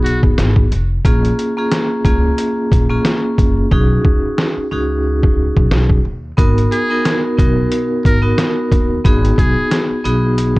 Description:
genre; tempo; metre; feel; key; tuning
hip hop, boom-bap hip-hop; 90 BPM; 4/4; swing 57% on 16ths; unclear; A4 = 440 Hz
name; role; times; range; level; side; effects
trumpet with metal mute; melody; 0.0-0.2, 6.7-9.9 s; F#4 to A#4; -23 LUFS; equal; digital delay
vibraphone with medium hard mallets; accompaniment; 0.0-10.6 s; A#3 to A#4; -17 LUFS; equal; none
upright bass; bass; 0.0-10.6 s; E#1 to D#2; -17 LUFS; equal; none
trip hop sampler-style drum kit; drums; 0.1-10.6 s; hi-hat, kick drum, snare drum; -15 LUFS; equal; none
room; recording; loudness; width
studio ambience; worn, warbling old tape, cassette tape, warbly pitch drift; -12 LUFS; side -21 dB against mid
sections
0.0-10.6 A section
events
hi-hats muted 3.7-6.4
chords
0.0 B6; 1.0 A#m7; 3.7 B6; 6.4 G#m7; 9.0 B6

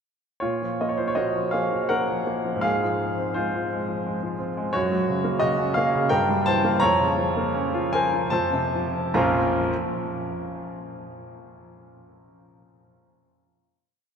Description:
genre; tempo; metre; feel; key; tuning
classical, romantic character piece for solo piano; 68-90 BPM; 3/4; rubato; Bb minor; A4 = 440 Hz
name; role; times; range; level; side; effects
clear grand piano; solo; 0.4-9.7 s; Bb1 to Bb5; -22 LUFS; equal; none
room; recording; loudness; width
wet cathedral reverb, RT60 5.0 s; in a vast, echoing space; -22 LUFS; side -6 dB against mid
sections
0.4-9.1 A section; 9.1-11.5 final chord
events
slowing down 3.7-9.1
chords
0.4 Bb5; 2.6 Fm/Ab; 4.7 Gb; 6.1 C7/G; 6.8 Bbm/F; 8.3 F; 9.1 Bbm

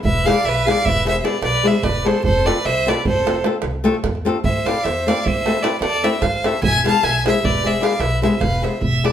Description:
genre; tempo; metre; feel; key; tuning
balkan folk, Balkan wedding band; 301 BPM (eighths); 11/8; straight; E phrygian dominant; A4 = 440 Hz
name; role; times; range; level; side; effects
warm fiddle; melody; 0.0-8.8 s; C5 to A5; -20 LUFS; equal; none
upright bass; bass; 0.0-9.1 s; E1 to E2; -24 LUFS; equal; none
bright violin; second line; 0.1-9.1 s; A4 to F5; -25 LUFS; right 3 dB; none
davul; percussion; 0.1-9.1 s; none; -23 LUFS; right 3 dB; none
flamenco guitar; accompaniment; 0.2-9.1 s; G#3 to A4; -21 LUFS; left 4 dB; none
room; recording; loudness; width
wet studio reverb, RT60 0.8 s; band playing live in one room; -16 LUFS; side -9 dB against mid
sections
0.0-8.8 A section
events
none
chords
0.0 E; 2.2 F; 4.4 Am; 6.6 E

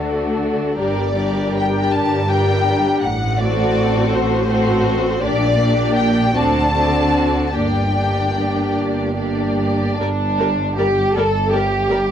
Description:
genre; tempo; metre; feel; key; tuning
classical, slow romantic movement for string orchestra; 47-56 BPM (dotted quarters); 6/8; rubato; G minor; A4 = 440 Hz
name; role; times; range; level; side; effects
warm studio violin section; second line; 0.0-12.1 s; D4 to D5; -22 LUFS; equal; none
rich studio viola section; accompaniment; 0.0-12.0 s; G3 to Bb4; -20 LUFS; left 1 dB; none
clear studio cello section; bass; 0.0-12.1 s; G2 to D3; -24 LUFS; right 1 dB; none
rich studio double bass section; bass; 0.0-12.1 s; G1 to D2; -23 LUFS; right 1 dB; none
rich studio violin section; melody; 0.8-12.0 s; C5 to A5; -22 LUFS; left 3 dB; none
room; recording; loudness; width
light reverb; worn, warbling old tape, cassette tape, warbly pitch drift; -15 LUFS; side -9 dB against mid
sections
0.0-10.0 A section; 10.0-12.1 A section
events
none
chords
0.0 D; 0.8 Gm; 3.0 F#dim/A; 5.2 Gm/Bb; 6.3 D7; 7.5 Gm

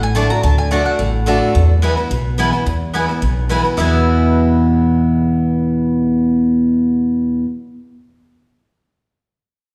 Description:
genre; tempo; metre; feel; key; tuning
bluegrass; 216 BPM; 4/4; swing 53% on 8ths; E mixolydian; A4 = 436 Hz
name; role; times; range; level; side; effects
mandolin; melody; 0.0-1.5, 3.8-7.4 s; E5 to A#5; -27 LUFS; equal; none
picked steel-string acoustic guitar; accompaniment; 0.0-7.5 s; E2 to F#4; -18 LUFS; equal; none
upright bass; bass; 0.0-7.4 s; A1 to E2; -20 LUFS; equal; none
mandolin; stabs; 0.2-7.5 s; A3 to A5; -24 LUFS; equal; none
room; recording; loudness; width
wet recital hall reverb, RT60 1.3 s; recorded in a church or concert hall; -16 LUFS; mono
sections
0.0-2.7 A section; 2.7-3.8 B section; 3.8-6.0 C section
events
none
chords
0.0 D; 1.6 E

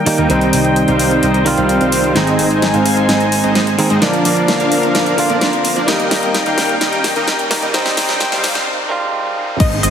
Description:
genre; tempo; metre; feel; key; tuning
EDM, festival progressive house; 129 BPM; 4/4; straight; unclear; A4 = 438 Hz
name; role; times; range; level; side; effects
direct-recorded clean electric guitar; accompaniment; 0.0-9.6 s; Ab2 to F4; -18 LUFS; right 2 dB; sidechain pumping, tape echo
warm studio string section; sustained chords; 0.0-9.9 s; D4 to Ab5; -21 LUFS; left 2 dB; sidechain pumping, low-pass filter
riser, swell and downlifter; sound effects; 2.0-9.9 s; none; -28 LUFS; equal; none
big-room dance drum kit; drums; 0.1-9.9 s; crash cymbal, hi-hat, shaker, snare drum; -19 LUFS; left 1 dB; none
supersaw chords; riff; 0.2-9.9 s; F3 to F5; -17 LUFS; equal; sidechain pumping, low-pass filter, tape echo
fat analog bass; bass; 0.2-9.9 s; Ab1 to Ab2; -24 LUFS; left 1 dB; sidechain pumping
wide unison pluck; arpeggios; 9.6-9.9 s; Eb5; -18 LUFS; left 1 dB; sidechain pumping
electronic kick drum; drums; 9.6-9.7 s; none; -12 LUFS; equal; none
room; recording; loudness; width
moderate lush hall reverb, RT60 2.1 s; heavily compressed radio sound, high-pass filter; -12 LUFS; side -8 dB against mid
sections
0.0-9.6 A section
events
build-up 0.0-9.6; filter sweep on supersaw synth 0.0-9.6; filter sweep 0.0-9.6; drum fill 2.2-8.7; break 8.7-9.6; swell 8.7-9.6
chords
0.3 Cm; 2.2 Ab; 4.0 Bb; 5.9 Eb; 7.7 Cm

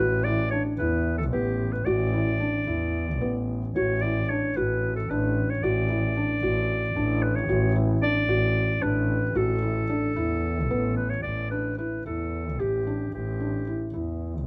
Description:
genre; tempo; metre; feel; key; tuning
contemporary instrumental, chamber music in an uneven meter; 224 BPM (eighths); 7/8; straight; A mixolydian; A4 = 440 Hz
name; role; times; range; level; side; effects
clear clarinet; melody; 0.0-13.9 s; G4 to D5; -32 LUFS; equal; none
felt-muted upright piano; arpeggios; 0.0-14.3 s; B3 to G4; -31 LUFS; equal; none
warm double bass; bass; 0.0-14.5 s; A1 to E2; -29 LUFS; equal; none
room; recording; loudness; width
light reverb; close, detailed microphones; -26 LUFS; mono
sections
0.0-11.2 A section; 11.2-14.5 A section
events
none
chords
0.0 Asus4; 3.8 D/A; 9.3 Asus2; 11.2 A7sus4

